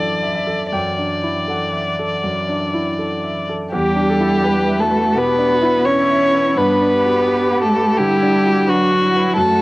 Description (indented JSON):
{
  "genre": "neoclassical piano and strings",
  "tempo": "79-87 BPM",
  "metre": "4/4",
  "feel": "rubato",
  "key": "E dorian",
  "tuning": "A4 = 440 Hz",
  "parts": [
    { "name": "muted violin", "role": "melody", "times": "0.0-9.6 s", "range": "F#4 to D5", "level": "-17 LUFS", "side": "left 1 dB", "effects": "none" },
    { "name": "muted cello", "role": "second line", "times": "0.0-9.6 s", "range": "E3 to C#4", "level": "-21 LUFS", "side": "right 2 dB", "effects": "cassette tape" },
    { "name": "clear concert grand piano", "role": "accompaniment", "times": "0.0-9.6 s", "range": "E2 to A5", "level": "-22 LUFS", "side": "equal", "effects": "cassette tape" },
    { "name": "muted viola", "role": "accompaniment", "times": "3.7-9.6 s", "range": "D4 to B4", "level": "-22 LUFS", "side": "right 1 dB", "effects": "cassette tape" }
  ],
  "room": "light reverb, small room ambience",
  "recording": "home recording on cassette",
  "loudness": "-14 LUFS",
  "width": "side -20 dB against mid",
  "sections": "0.0-3.7 A section; 3.7-9.6 A section",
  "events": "none",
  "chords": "0.0 Dadd9/F#; 3.7 Em7; 6.6 Gmaj7",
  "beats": "| 0.72 1.48 2.23 2.98 | 3.73 4.44 5.15 5.86 | 6.57 7.27 7.98 8.68 | 9.37"
}